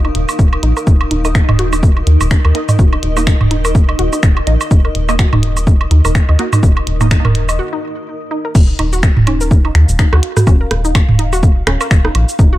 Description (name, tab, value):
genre	minimal techno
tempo	125 BPM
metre	4/4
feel	swing 57% on 16ths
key	Eb minor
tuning	A4 = 440 Hz
part	resonant blip pluck	riff	0.0-12.6 s	Db4 to Eb5	-23 LUFS	equal	chorus, sidechain pumping, digital delay
part	rubbery square bass	bass	0.0-12.6 s	Eb1 to Eb2	-14 LUFS	equal	sidechain pumping
part	techno drum kit	percussion	0.0-12.3 s	rim click, toms, woodblock	-17 LUFS	right 2 dB	overdrive
part	granular cloud pad	texture	0.0-12.6 s	Eb4 to Eb6	-24 LUFS	equal	built-in reverb, sidechain pumping
part	minimal click drum kit	drums	0.1-12.5 s	cabasa, crash cymbal, finger snaps, hi-hat	-22 LUFS	equal	none
part	electronic kick drum	drums	0.4-12.5 s	none	-10 LUFS	equal	overdrive
part	filtered dub chord stab	stabs	1.2-7.1 s	Bb3 to Eb5	-24 LUFS	right 3 dB	phaser, ensemble chorus, digital delay
part	folk marimba with soft mallets	melody	9.3-10.8 s	Eb4 to Gb4	-25 LUFS	left 1 dB	digital delay
room	digital ambience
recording	dark, warm production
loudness	-10 LUFS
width	side -15 dB against mid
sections	0.0-8.6 A section; 8.6-12.6 B section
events	filter sweep on synth arpeggio sound 0.0-8.6; break 7.6-8.6; drop 8.6-12.6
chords	0.0 Eb5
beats	0.39 | 0.87 1.35 1.83 2.31 | 2.79 3.27 3.75 4.23 | 4.71 5.19 5.67 6.15 | 6.63 7.11 7.59 8.07 | 8.55 9.03 9.51 9.99 | 10.47 10.95 11.43 11.91 | 12.39